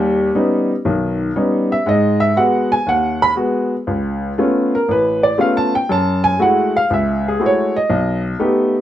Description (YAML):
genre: solo jazz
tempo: 120 BPM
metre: 4/4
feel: swing 67% on 8ths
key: unclear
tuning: A4 = 441 Hz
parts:
  - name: warm upright piano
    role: solo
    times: 0.0-8.8 s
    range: A1 to B5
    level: -14 LUFS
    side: equal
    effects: none
room: moderate studio reverb, RT60 0.5 s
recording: dark, warm production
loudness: -14 LUFS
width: side -12 dB against mid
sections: 0.0-8.8 A section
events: upright piano solo 0.0-8.8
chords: 0.0 D#aug7; 1.9 G#m7; 3.9 C#aug7; 5.9 F#m9; 7.9 Baug7